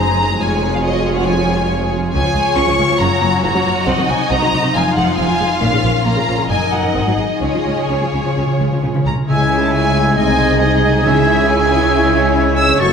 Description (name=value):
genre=classical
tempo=137 BPM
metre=4/4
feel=rubato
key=Db major, C# minor from 9.3 s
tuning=A4 = 440 Hz
part: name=warm symphonic violin section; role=melody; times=0.0-12.9 s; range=Db5 to E6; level=-19 LUFS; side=left 2 dB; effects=none
part: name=warm symphonic violin section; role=second line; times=0.0-12.9 s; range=F4 to F5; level=-21 LUFS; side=equal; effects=none
part: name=warm symphonic viola section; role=accompaniment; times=0.0-12.9 s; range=Db3 to F#4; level=-22 LUFS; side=right 1 dB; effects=none
part: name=concert harp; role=arpeggios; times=0.0-12.9 s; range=F2 to G#5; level=-21 LUFS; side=left 6 dB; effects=none
part: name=rich symphonic cello section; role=bass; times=0.0-12.9 s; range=Db2 to Db3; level=-23 LUFS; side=right 2 dB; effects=none
part: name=rich symphonic double bass section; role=bass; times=0.0-12.9 s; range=F1 to Db2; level=-22 LUFS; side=right 2 dB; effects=none
part: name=timpani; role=percussion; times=7.4-11.7 s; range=Db3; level=-21 LUFS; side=right 1 dB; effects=none
part: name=clear oboe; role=second line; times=9.3-12.9 s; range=C#5 to E5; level=-23 LUFS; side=right 1 dB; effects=none
part: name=dark clarinet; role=second line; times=9.3-12.9 s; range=F#4 to G#4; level=-22 LUFS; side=right 6 dB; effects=none
part: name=silver concert flute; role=second line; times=9.3-12.9 s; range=G#6 to A6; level=-20 LUFS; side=equal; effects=none
part: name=warm French horn section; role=sustained chords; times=9.3-12.9 s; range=G#3 to F#4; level=-21 LUFS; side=left 4 dB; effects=none
room=wet scoring stage reverb, RT60 1.8 s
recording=none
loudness=-13 LUFS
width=side -6 dB against mid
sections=0.0-9.3 A section; 9.3-12.9 B section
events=timpani fill 7.4-9.3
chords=0.4 Db/F; 2.1 Db; 3.0 Gbmaj7; 3.9 Cdim; 4.7 Fm7; 5.6 Bbm; 6.5 Ebm/Gb; 6.9 Ab7(no3); 7.4 Db; 9.3 C#m; 10.2 G#/B#; 11.1 C#m